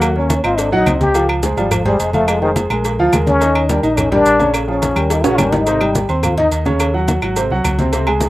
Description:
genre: Afro-Cuban jazz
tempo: 212 BPM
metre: 4/4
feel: straight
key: Eb major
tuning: A4 = 440 Hz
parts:
  - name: trombone with plunger mute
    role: second line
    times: 0.0-6.5 s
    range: Eb3 to G4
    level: -16 LUFS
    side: left 2 dB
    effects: none
  - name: warm upright piano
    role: accompaniment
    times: 0.0-8.3 s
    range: C3 to C6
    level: -18 LUFS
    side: equal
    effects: none
  - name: fingered electric bass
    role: bass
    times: 0.0-8.3 s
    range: F1 to Eb2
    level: -20 LUFS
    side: right 1 dB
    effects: none
  - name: agogo bells and timbales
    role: percussion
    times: 0.0-8.2 s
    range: none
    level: -24 LUFS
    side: right 5 dB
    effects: slapback echo
  - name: claves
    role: percussion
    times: 0.0-8.2 s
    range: none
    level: -28 LUFS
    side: left 3 dB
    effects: none
  - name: congas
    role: percussion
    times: 0.0-8.3 s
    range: none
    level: -22 LUFS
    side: left 1 dB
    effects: none
  - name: cowbell and bongos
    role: percussion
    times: 0.0-8.3 s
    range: none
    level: -27 LUFS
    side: left 3 dB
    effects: none
  - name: maracas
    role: percussion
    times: 0.0-8.3 s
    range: none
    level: -30 LUFS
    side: right 4 dB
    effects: none
room: little or no reverb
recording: recorded outdoors, with no room sound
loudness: -13 LUFS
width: side -16 dB against mid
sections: 0.0-5.7 A section; 5.7-8.3 A section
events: trombone solo 0.0-8.3; drum fill 5.1-5.7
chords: 0.0 Ab7; 1.2 Dbmaj7; 2.3 Fm; 2.8 Bb7; 3.4 Ebmaj7; 4.5 Bbm7; 5.1 Eb7; 5.7 Abmaj7; 6.8 Ebm7; 7.4 Ab7

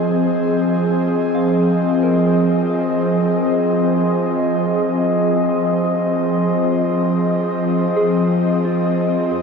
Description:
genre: ambient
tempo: free time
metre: none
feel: none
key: F minor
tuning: A4 = 441 Hz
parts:
  - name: airy breathy pad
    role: sustained chords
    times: 0.0-9.4 s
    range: F2 to Eb5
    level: -16 LUFS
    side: equal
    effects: chorus, shimmer reverb
  - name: soft synth bell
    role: arpeggios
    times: 0.0-9.4 s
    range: F4 to F5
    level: -27 LUFS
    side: left 1 dB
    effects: chorus, ping-pong delay, shimmer reverb
  - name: bowed-like drone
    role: drone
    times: 0.0-9.4 s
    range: F3 to C4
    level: -23 LUFS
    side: left 2 dB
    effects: built-in reverb
  - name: glass harmonica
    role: texture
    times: 0.0-9.4 s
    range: C5 to C6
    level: -30 LUFS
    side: equal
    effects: shimmer reverb
room: wet huge ambient reverb, RT60 9.2 s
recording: in a vast, echoing space, cassette tape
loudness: -15 LUFS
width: side -5 dB against mid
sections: 0.0-9.4 A section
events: fade-in on synth bell 0.0-9.4; fade-in on glass harmonica 0.0-9.4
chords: 0.0 Fm7

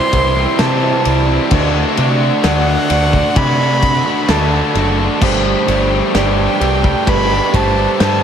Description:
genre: post-rock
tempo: 65 BPM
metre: 4/4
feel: straight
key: unclear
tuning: A4 = 441 Hz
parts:
  - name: rich violin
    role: melody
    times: 0.0-8.2 s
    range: F#5 to C6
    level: -19 LUFS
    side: right 1 dB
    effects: ping-pong delay
  - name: vibraphone with hard mallets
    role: arpeggios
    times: 0.0-8.2 s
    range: A4 to D5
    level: -21 LUFS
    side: right 4 dB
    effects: ping-pong delay
  - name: distorted electric guitar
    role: riff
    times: 0.0-8.2 s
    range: C3 to G4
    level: -19 LUFS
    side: left 10 dB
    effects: overdrive
  - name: thick fuzz guitar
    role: riff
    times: 0.0-8.2 s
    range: C3 to G4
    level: -20 LUFS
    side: right 9 dB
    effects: distortion
  - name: growling picked electric bass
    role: bass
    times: 0.1-8.2 s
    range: F#1 to C3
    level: -17 LUFS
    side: left 1 dB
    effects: overdrive
  - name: loose indie drum kit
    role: drums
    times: 0.1-8.2 s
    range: crash cymbal, kick drum, ride cymbal, snare drum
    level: -19 LUFS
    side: left 1 dB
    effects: none
room: moderate huge ambient reverb, RT60 4.8 s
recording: dreamy mix soaked in reverb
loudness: -11 LUFS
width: side -8 dB against mid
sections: 0.0-8.2 A section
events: none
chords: 0.0 Cadd9; 1.5 D; 5.2 Gsus2

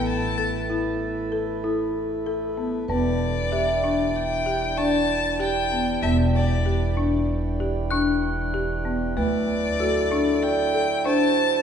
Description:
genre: contemporary instrumental, chamber music in an uneven meter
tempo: 96 BPM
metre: 5/4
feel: straight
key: E minor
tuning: A4 = 439 Hz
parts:
  - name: warm violin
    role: melody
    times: 0.0-11.6 s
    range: D5 to A5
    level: -28 LUFS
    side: left 3 dB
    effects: none
  - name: vibraphone with soft mallets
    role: second line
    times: 0.0-11.6 s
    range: A4 to E5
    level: -28 LUFS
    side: right 3 dB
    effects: none
  - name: pedal harmonium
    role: sustained chords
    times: 0.0-11.6 s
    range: E3 to B4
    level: -32 LUFS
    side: right 3 dB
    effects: none
  - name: folk marimba with medium mallets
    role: arpeggios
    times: 0.0-11.6 s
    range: A3 to A4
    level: -26 LUFS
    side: left 3 dB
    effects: none
  - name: upright bass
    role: bass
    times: 0.0-11.6 s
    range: E1 to D2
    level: -28 LUFS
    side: right 1 dB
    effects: none
  - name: glockenspiel with brass mallets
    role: texture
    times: 0.4-1.9, 7.9-9.4 s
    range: F#6 to A6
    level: -33 LUFS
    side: left 1 dB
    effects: none
room: wet church reverb, RT60 3.5 s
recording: recorded in a church or concert hall, nothing above 10.8 kHz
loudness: -21 LUFS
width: side -8 dB against mid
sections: 0.0-11.6 A section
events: none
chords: 0.0 Asus2; 2.9 Em7; 9.2 Dadd9

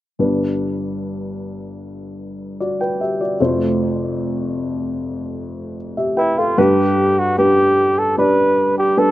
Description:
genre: pop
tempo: 75 BPM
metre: 4/4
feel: straight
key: G major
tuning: A4 = 437 Hz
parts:
  - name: dark baby grand piano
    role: accompaniment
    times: 0.2-9.1 s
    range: F1 to G5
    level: -18 LUFS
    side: left 1 dB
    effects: slapback echo
  - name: warm flugelhorn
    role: melody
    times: 6.2-9.1 s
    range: E4 to B4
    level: -15 LUFS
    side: right 1 dB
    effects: slapback echo
room: light reverb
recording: recorded outdoors, with no room sound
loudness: -15 LUFS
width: side -15 dB against mid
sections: 0.2-6.6 A section; 6.6-9.1 B section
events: none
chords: 0.2 G; 3.4 F; 6.6 G

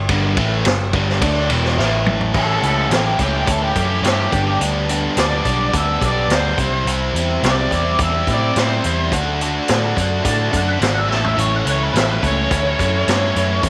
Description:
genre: blues rock power trio and southern rock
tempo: 106 BPM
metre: 4/4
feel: straight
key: A mixolydian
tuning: A4 = 439 Hz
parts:
  - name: biting overdriven guitar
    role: riff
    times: 0.0-13.7 s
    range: E2 to F#4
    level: -22 LUFS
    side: equal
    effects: none
  - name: vintage muted picked electric bass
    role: bass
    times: 0.0-13.7 s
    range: E1 to A2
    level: -23 LUFS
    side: equal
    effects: none
  - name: vintage drum kit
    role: drums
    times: 0.1-13.7 s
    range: crash cymbal, hi-hat, kick drum, ride cymbal, snare drum, toms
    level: -24 LUFS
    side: equal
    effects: none
  - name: octave-fuzz lead guitar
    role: melody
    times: 2.4-13.7 s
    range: G4 to B5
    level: -24 LUFS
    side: equal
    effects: wah, distortion, slapback echo
room: light reverb, small room ambience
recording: none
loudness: -18 LUFS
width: mono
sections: 0.0-2.3 A section; 2.3-13.7 B section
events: drum fill 1.8-2.3, 11.1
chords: 0.0 G5; 1.8 A5; 2.3 A; 4.3 G; 6.6 C; 9.1 D; 11.1 A

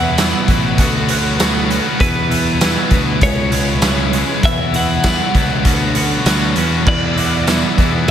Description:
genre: indie rock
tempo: 98 BPM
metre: 4/4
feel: straight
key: E mixolydian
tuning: A4 = 441 Hz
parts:
  - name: twelve-string electric guitar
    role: melody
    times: 0.0-8.1 s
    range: B4 to F#5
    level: -22 LUFS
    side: left 1 dB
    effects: analog delay
  - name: warm analog pad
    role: sustained chords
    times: 0.0-8.1 s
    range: B4 to E6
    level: -29 LUFS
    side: left 1 dB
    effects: chorus
  - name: high-gain distorted guitar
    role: riff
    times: 0.0-8.1 s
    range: C#3 to F#4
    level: -21 LUFS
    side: left 10 dB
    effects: distortion
  - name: twangy electric guitar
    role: riff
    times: 0.0-8.1 s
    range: E2 to G#4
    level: -22 LUFS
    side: right 8 dB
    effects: lush chorus, slapback echo
  - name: fuzz picked electric bass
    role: bass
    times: 0.0-8.1 s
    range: A1 to E2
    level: -19 LUFS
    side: equal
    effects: overdrive
  - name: raw garage drum kit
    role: drums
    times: 0.2-8.1 s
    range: crash cymbal, hi-hat, kick drum, snare drum, tambourine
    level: -16 LUFS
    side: equal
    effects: none
room: light reverb, studio ambience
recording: none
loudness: -13 LUFS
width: side -9 dB against mid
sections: 0.0-8.1 A section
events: none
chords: 0.0 Esus2; 0.8 Bmadd9/D; 2.0 Esus2; 3.2 C#m7; 4.4 Esus2; 5.7 Bmadd9/D; 6.9 Esus2

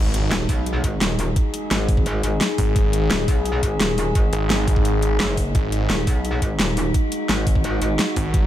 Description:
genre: dark technical drum and bass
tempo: 172 BPM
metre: 4/4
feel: straight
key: G# minor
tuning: A4 = 440 Hz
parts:
  - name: metallic inharmonic drone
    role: sustained chords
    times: 0.0-8.5 s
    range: G#3 to G#4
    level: -25 LUFS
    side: left 2 dB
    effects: chorus, built-in reverb, sidechain pumping
  - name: snarling distorted saw bass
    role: bass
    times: 0.0-0.3, 2.6-5.9, 8.2-8.5 s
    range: G#1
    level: -22 LUFS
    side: equal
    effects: distortion, tube saturation, sidechain pumping
  - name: impact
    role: sound effects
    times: 0.0-1.4 s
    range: none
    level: -35 LUFS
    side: equal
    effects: none
  - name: dubstep drum kit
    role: drums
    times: 0.1-8.4 s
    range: hi-hat, snare drum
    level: -25 LUFS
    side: equal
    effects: none
  - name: metallic wobble bass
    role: bass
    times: 0.3-8.0 s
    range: D#1 to B1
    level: -23 LUFS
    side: equal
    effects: chorus
  - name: electronic kick drum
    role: drums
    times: 0.5-8.4 s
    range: none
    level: -20 LUFS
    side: equal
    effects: none
room: light reverb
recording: none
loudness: -18 LUFS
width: side -12 dB against mid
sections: 0.0-8.5 A section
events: impact 0.0-1.4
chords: 0.0 G#5

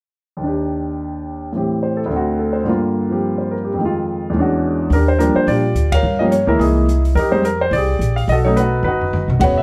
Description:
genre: jazz piano trio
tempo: 214 BPM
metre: 4/4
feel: swing 59% on 8ths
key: Eb major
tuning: A4 = 442 Hz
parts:
  - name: warm grand piano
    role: melody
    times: 0.4-9.6 s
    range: D2 to F#5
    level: -19 LUFS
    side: equal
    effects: none
  - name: upright bass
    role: bass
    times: 4.9-9.6 s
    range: E1 to Bb2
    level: -20 LUFS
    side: equal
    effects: none
  - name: open jazz drum kit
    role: drums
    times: 4.9-9.5 s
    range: hi-hat, kick drum, ride cymbal, toms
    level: -24 LUFS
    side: equal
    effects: none
room: moderate large studio reverb, RT60 0.9 s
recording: none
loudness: -18 LUFS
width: mono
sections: 0.4-4.9 A section; 4.9-9.6 B section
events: band accent 5.9; drum fill 8.8-9.4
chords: 0.4 Ebmaj7; 1.5 Am7; 2.1 D7; 2.7 Gm7; 3.8 Fm7; 4.4 E13; 4.9 Ebmaj9; 6.0 Gm7b5; 6.6 C7alt; 7.2 Fm9; 8.3 B7

